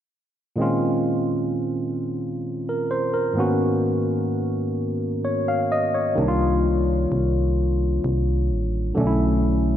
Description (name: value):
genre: slow six-eight R&B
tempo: 43 BPM (dotted quarters)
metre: 6/8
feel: straight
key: unclear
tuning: A4 = 439 Hz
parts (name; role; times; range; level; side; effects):
- barky tine electric piano; accompaniment; 0.6-9.8 s; Ab2 to F5; -21 LUFS; equal; overdrive
- solid FM bass; bass; 6.2-9.8 s; A1 to C2; -22 LUFS; right 1 dB; none
room: wet lush hall reverb, RT60 2.5 s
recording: dreamy mix soaked in reverb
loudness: -20 LUFS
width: side -10 dB against mid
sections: 0.6-9.8 A section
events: none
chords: 0.6 Bbm11; 3.4 Abm11; 6.2 Cm11; 9.0 Bm11